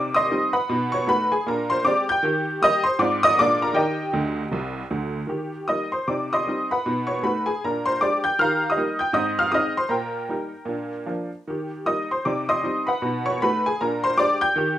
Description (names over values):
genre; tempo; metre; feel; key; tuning
jazz, stride piano; 156 BPM; 4/4; swing 60% on 8ths; Eb major; A4 = 441 Hz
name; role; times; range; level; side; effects
honky-tonk upright piano; solo; 0.0-14.8 s; C2 to G6; -20 LUFS; equal; none
room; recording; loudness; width
wet studio reverb, RT60 0.6 s; rough home demo mix; -20 LUFS; side -12 dB against mid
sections
0.0-5.3 A section; 5.3-14.8 A section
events
honky-tonk piano fill 4.2-5.3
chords
0.0 Cm; 0.7 B7; 1.5 Bb13; 2.2 Eb; 3.0 Ab6; 3.4 Bb7; 3.8 Eb; 6.1 Cm; 6.9 B7; 7.6 Bb13; 8.4 Eb; 9.2 Ab; 9.9 Eb/Bb; 10.7 Bb; 11.5 Eb; 12.3 Cm; 13.0 B7; 13.8 Bb13